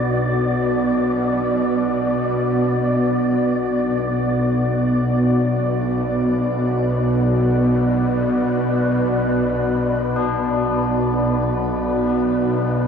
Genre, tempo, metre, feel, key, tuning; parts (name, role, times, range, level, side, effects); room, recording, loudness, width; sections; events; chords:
dark ambient drone; free time; B minor; A4 = 440 Hz
deep dark ambient pad; sustained chords; 0.0-12.9 s; B3 to D5; -20 LUFS; equal; chorus, built-in reverb, shimmer reverb
tubular bells; arpeggios; 0.0-12.9 s; D4 to F#4; -27 LUFS; left 4 dB; tape echo, shimmer reverb
bowed-like drone; drone; 0.0-12.9 s; B1 to B2; -21 LUFS; equal; built-in reverb
wind-like tuned noise texture; texture; 0.0-12.9 s; B4 to D5; -30 LUFS; left 1 dB; built-in reverb, shimmer reverb
wet cathedral reverb, RT60 5.2 s; in a vast, echoing space; -17 LUFS; side -7 dB against mid
0.0-12.9 A section
0.0 Bm